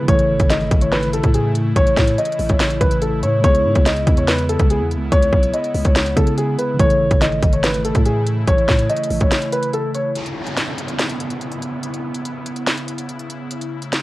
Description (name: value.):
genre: hip hop, trap.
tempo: 143 BPM.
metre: 4/4.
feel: half-time.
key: C# minor.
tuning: A4 = 440 Hz.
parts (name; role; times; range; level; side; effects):
dark grand piano; melody; 0.0-10.1 s; G#4 to D#5; -20 LUFS; left 1 dB; low-pass filter.
mellow tine electric piano; accompaniment; 0.0-10.2 s; C#3 to A4; -24 LUFS; equal; medium stereo tremolo, low-pass filter.
airy breathy pad; sustained chords; 0.0-14.0 s; C#3 to E4; -27 LUFS; equal; chorus.
downlifter; sound effects; 0.0-0.1, 10.2-13.5 s; none; -30 LUFS; equal; none.
growling 808-style bass; bass; 0.1-9.3 s; G#1 to C#3; -21 LUFS; equal; none.
trap drum kit; drums; 0.1-14.0 s; hi-hat, kick drum, snare drum; -18 LUFS; equal; none.
room: light reverb.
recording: worn, warbling old tape, cassette tape, warbly pitch drift.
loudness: -15 LUFS.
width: side -18 dB against mid.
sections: 0.0-10.2 A section; 10.2-14.0 B section.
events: break 9.3-10.2, 10.2-14.0.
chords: 0.1 A; 3.4 C#m7; 6.8 A; 10.2 C#m7; 13.5 A.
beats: | 0.08 0.50 0.92 1.34 | 1.76 2.18 2.60 3.02 | 3.44 3.86 4.28 4.70 | 5.12 5.54 5.96 6.38 | 6.80 7.22 7.64 8.05 | 8.47 8.89 9.31 9.73 | 10.15 10.57 10.99 11.41 | 11.83 12.25 12.67 13.09 | 13.51 13.93.